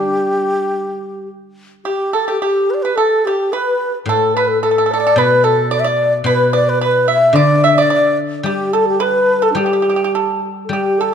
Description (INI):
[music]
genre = chinese traditional, Chinese chamber ensemble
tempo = 109 BPM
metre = 4/4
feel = rubato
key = G gong mode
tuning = A4 = 440 Hz
[part]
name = breathy mellow xiao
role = melody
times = 0.0-11.1 s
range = D4 to E5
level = -16 LUFS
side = equal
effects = none
[part]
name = pipa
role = second line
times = 0.0-11.1 s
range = G4 to E5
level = -19 LUFS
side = right 6 dB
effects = none
[part]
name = guzheng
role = accompaniment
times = 0.0-11.1 s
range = A2 to D4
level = -20 LUFS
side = left 2 dB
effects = none
[part]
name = mellow low xiao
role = second line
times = 1.9-11.1 s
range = G4 to E5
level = -19 LUFS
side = left 5 dB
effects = none
[sound]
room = moderate concert hall reverb, RT60 1.9 s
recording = dark, warm production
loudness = -13 LUFS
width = side -8 dB against mid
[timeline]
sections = 0.0-1.9 A section; 1.9-11.1 B section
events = none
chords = none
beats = 0.13 0.69 1.28 | 1.86 2.42 2.97 3.53 | 4.08 4.63 5.17 5.72 | 6.26 6.81 7.36 7.91 | 8.46 9.01 9.57 10.14 | 10.71